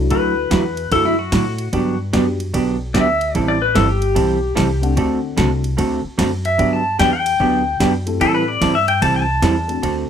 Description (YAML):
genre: country, western swing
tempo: 148 BPM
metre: 4/4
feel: swing 65% on 8ths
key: G major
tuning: A4 = 441 Hz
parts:
  - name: dark upright piano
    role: accompaniment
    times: 0.0-2.4, 4.8-5.6, 8.1-10.1 s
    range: F#3 to F#5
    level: -24 LUFS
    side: left 6 dB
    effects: none
  - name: upright bass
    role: bass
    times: 0.0-10.1 s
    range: G1 to A2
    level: -22 LUFS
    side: equal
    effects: none
  - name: pedal steel guitar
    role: second line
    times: 0.1-9.9 s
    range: E4 to A5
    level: -18 LUFS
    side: left 3 dB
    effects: none
  - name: vintage hollow-body jazz guitar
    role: accompaniment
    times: 0.1-10.1 s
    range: D3 to A4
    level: -20 LUFS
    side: right 4 dB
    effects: none
  - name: punchy analog drum machine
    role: drums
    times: 0.1-10.0 s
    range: hi-hat, kick drum, ride cymbal, snare drum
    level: -22 LUFS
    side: equal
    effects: overdrive
room: light reverb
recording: none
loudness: -15 LUFS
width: side -8 dB against mid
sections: 0.0-10.1 A section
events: pedal steel guitar solo 0.0-10.1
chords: 0.1 Dadd9; 1.7 Gmaj7; 3.3 Am7; 5.0 D7; 6.6 Gmaj7; 8.2 Am7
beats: | 0.11 0.51 0.92 1.32 | 1.73 2.13 2.54 2.94 | 3.35 3.75 4.16 4.56 | 4.97 5.37 5.78 6.18 | 6.59 6.99 7.40 7.80 | 8.21 8.61 9.02 9.42 | 9.83